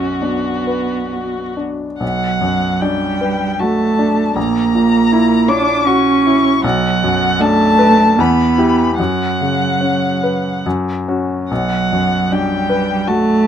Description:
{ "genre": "classical, slow romantic movement for piano trio", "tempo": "66-82 BPM", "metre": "3/4", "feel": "rubato", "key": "B minor", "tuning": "A4 = 440 Hz", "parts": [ { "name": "muted violin", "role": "melody", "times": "0.0-13.5 s", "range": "F#4 to D6", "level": "-18 LUFS", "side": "left 4 dB", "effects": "none" }, { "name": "muted cello", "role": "second line", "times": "0.0-13.5 s", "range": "F#3 to D4", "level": "-16 LUFS", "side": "right 5 dB", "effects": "none" }, { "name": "clear baby grand piano", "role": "accompaniment", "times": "0.0-13.5 s", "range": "A#1 to C#5", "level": "-18 LUFS", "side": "left 3 dB", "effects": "none" } ], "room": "light reverb", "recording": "close, detailed microphones", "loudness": "-13 LUFS", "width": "side -9 dB against mid", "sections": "0.0-2.0 A section; 2.0-13.5 A section", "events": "none", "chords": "0.0 Bm; 4.4 F#7/A#; 6.6 Bm; 8.2 Em; 9.0 F#sus4; 10.6 F#5; 11.5 Bm" }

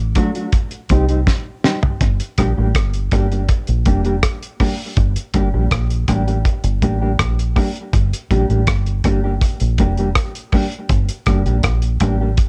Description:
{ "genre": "roots reggae", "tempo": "81 BPM", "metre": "4/4", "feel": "straight", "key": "G minor", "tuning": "A4 = 435 Hz", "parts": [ { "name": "deep dub fingered electric bass", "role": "bass", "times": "0.0-12.4 s", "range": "F1 to C2", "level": "-20 LUFS", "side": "equal", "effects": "none" }, { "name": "mellow electric guitar", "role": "accompaniment", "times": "0.2-12.3 s", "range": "F#3 to G4", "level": "-23 LUFS", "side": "equal", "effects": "tremolo, cassette tape, tape echo" }, { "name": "cloth-damped thuddy drum kit", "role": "drums", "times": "0.2-12.5 s", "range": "hi-hat, kick drum, rim click, snare drum, toms", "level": "-20 LUFS", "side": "equal", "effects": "cassette tape, tape echo" } ], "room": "light reverb", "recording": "home recording on cassette", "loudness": "-18 LUFS", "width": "mono", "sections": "0.0-2.0 A section; 2.0-12.5 B section", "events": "drum fill 1.3-2.0", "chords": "0.0 D; 0.5 Cm; 2.0 Gm" }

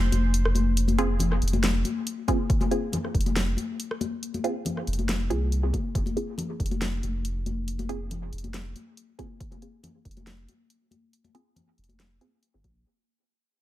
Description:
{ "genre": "deep dubstep", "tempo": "139 BPM", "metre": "4/4", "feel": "half-time", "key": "F minor", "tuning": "A4 = 440 Hz", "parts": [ { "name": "saturated sub bass", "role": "bass", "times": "0.0-12.8 s", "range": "F1 to C2", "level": "-26 LUFS", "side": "equal", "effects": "none" }, { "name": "deep house drum kit", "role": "drums", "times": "0.1-12.7 s", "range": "hi-hat, rim click, snare drum", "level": "-32 LUFS", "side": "equal", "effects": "none" }, { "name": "congas", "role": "percussion", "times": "0.1-12.7 s", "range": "none", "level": "-31 LUFS", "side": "left 5 dB", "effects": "dub echo" }, { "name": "filtered dub chord stab", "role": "stabs", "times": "1.0-12.6 s", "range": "C4 to Ab4", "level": "-32 LUFS", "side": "right 2 dB", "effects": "phaser, vintage 12-bit sampler grit, dub echo" }, { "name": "electronic kick drum", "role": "drums", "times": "2.3-12.7 s", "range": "none", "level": "-27 LUFS", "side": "equal", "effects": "none" } ], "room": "little or no reverb", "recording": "none", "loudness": "-25 LUFS", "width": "side -14 dB against mid", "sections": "0.0-12.9 A section", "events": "fade-out 0.0-12.9; filter sweep on synth stab 0.0-12.9", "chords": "0.0 Fm" }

